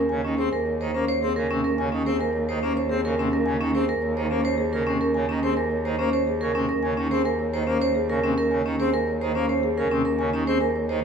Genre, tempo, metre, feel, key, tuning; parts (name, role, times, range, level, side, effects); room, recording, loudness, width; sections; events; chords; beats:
classical, minimalist pattern music; 107 BPM; 3/4; straight; A4 = 440 Hz
marimba with soft mallets; melody; 0.0-10.9 s; Ab4 to Ab5; -29 LUFS; left 11 dB
vibraphone with hard mallets; arpeggios; 0.0-11.0 s; Db4 to C5; -24 LUFS; right 3 dB
rich cello; bass; 0.0-11.0 s; Eb2; -28 LUFS; right 3 dB
pipe organ, full organ; accompaniment; 0.1-11.0 s; C3 to C4; -30 LUFS; left 2 dB
moderate large studio reverb, RT60 1.2 s; minimal, uncompressed stereo recording; -21 LUFS; side -6 dB against mid
0.0-11.0 A section
0.0 Eb7sus4
| 0.10 0.66 1.22 | 1.78 2.34 2.90 | 3.46 4.03 4.59 | 5.15 5.71 6.27 | 6.83 7.39 7.95 | 8.51 9.07 9.63 | 10.19 10.75